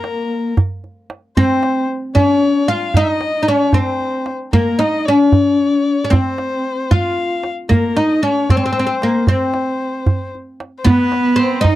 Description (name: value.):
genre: Persian modal ensemble.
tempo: 76 BPM (dotted quarters).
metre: 6/8.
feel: straight.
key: C dastgah shur.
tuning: A4 = 440 Hz.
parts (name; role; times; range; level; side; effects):
oud; melody; 0.0-11.8 s; Bb3 to F4; -15 LUFS; left 1 dB; none.
rich kamancheh; second line; 0.0-11.8 s; Bb4 to F5; -23 LUFS; left 3 dB; none.
tombak; percussion; 0.0-11.8 s; none; -16 LUFS; right 2 dB; none.
rich cello; second line; 10.9-11.8 s; B3 to Eb4; -19 LUFS; right 6 dB; none.
room: light reverb.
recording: dry, close 1970s-style studio recording.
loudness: -14 LUFS.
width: side -15 dB against mid.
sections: 0.0-10.9 A section.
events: none.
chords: none.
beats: 0.57 | 1.36 2.16 | 2.95 3.74 | 4.53 5.33 | 6.12 6.91 | 7.70 8.49 | 9.28 10.07 | 10.86 11.65.